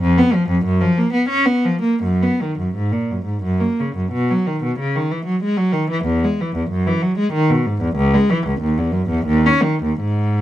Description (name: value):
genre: classical, baroque-style suite movement for unaccompanied cello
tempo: 76-96 BPM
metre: 3/4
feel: rubato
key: B major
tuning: A4 = 440 Hz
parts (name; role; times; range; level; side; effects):
- clear cello; solo; 0.0-10.4 s; C#2 to C#4; -16 LUFS; equal; none
room: light reverb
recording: close, detailed microphones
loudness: -16 LUFS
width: side -13 dB against mid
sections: 0.0-10.4 A section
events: none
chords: none